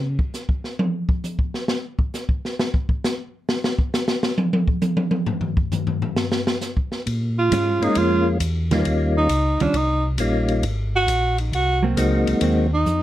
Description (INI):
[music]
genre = soul jazz organ trio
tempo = 134 BPM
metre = 4/4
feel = swing 68% on 8ths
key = Ab mixolydian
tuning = A4 = 436 Hz
[part]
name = mellow tonewheel organ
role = bass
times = 0.0-0.2, 7.1-13.0 s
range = Ab1 to Db3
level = -22 LUFS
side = equal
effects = none
[part]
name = open jazz drum kit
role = drums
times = 0.2-13.0 s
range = hi-hat, kick drum, ride cymbal, snare drum, toms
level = -23 LUFS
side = equal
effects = none
[part]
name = breathy tenor saxophone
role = melody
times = 7.4-13.0 s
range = D4 to Gb4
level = -20 LUFS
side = right 2 dB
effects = none
[part]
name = hollow-body jazz guitar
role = accompaniment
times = 7.5-12.7 s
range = Eb3 to F4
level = -24 LUFS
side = right 4 dB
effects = none
[part]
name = percussive tonewheel organ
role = melody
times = 7.8-12.7 s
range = G3 to Gb4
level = -21 LUFS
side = left 2 dB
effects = slow rotary speaker
[sound]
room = light reverb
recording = none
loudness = -19 LUFS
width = side -13 dB against mid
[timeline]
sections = 0.0-13.0 A section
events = tenor saxophone solo 0.0-13.0; drum solo 0.0-7.1; drum fill 12.9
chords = 0.0 N.C.; 7.1 Bbm7; 8.9 Eb9; 10.6 Ab9